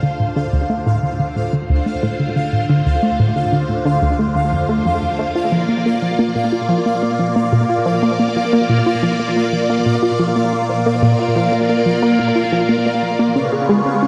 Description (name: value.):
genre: ambient, sequencer-driven space music.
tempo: 90 BPM.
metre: 4/4.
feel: straight.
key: unclear.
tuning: A4 = 440 Hz.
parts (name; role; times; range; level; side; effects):
phased string machine; sustained chords; 0.0-14.1 s; D2 to D5; -22 LUFS; equal; ensemble chorus, phaser.
tight sequenced synth; riff; 0.0-14.1 s; D2 to G#4; -19 LUFS; equal; chorus, analog delay.
pulsing gated texture; texture; 0.0-14.1 s; F5; -26 LUFS; equal; chorus, built-in reverb.
room: wet lush hall reverb, RT60 2.7 s.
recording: worn, warbling old tape, cassette tape, warbly pitch drift.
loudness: -17 LUFS.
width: mono.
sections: 0.0-14.1 A section.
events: fade-in on string machine 0.0-14.1; filter sweep on synth arpeggio sound 0.0-14.1.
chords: 0.0 Dm7; 5.4 Bb; 13.4 C#7.